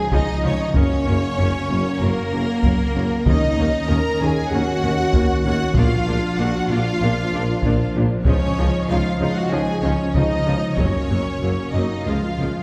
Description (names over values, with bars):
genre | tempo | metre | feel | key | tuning
cinematic, epic orchestral film score | 96 BPM | 4/4 | straight | Eb minor | A4 = 441 Hz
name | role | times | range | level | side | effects
clear symphonic violin section | melody | 0.0-12.6 s | Bb4 to Bb5 | -30 LUFS | equal | none
warm symphonic violin section | second line | 0.0-12.6 s | Bb3 to Bb4 | -30 LUFS | equal | none
dark French horn section | sustained chords | 0.0-12.6 s | Bb3 to Bb4 | -32 LUFS | equal | none
warm trombone section | sustained chords | 0.0-12.6 s | Eb3 to Eb4 | -29 LUFS | equal | none
rich symphonic viola section | accompaniment | 0.1-12.5 s | F3 to Eb4 | -30 LUFS | equal | none
mellow tuba | bass | 0.1-12.5 s | Gb1 to Eb2 | -29 LUFS | equal | none
rich symphonic cello section | bass | 0.1-12.5 s | Db2 to Db3 | -29 LUFS | equal | none
warm symphonic double bass section | bass | 0.1-12.5 s | Gb1 to Eb2 | -28 LUFS | equal | none
taiko ensemble | drums | 0.1-11.4 s | none | -25 LUFS | equal | none
timpani | percussion | 3.3-4.2 s | Eb3 | -28 LUFS | equal | none
room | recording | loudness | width
wet scoring stage reverb, RT60 1.6 s | heard from further back in the room | -20 LUFS | mono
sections
0.0-12.6 A section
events
none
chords
0.0 Dbadd9; 0.8 Gb; 3.3 Ebm7; 5.8 Bb; 8.3 Dbadd9; 10.8 Gb; 12.1 Db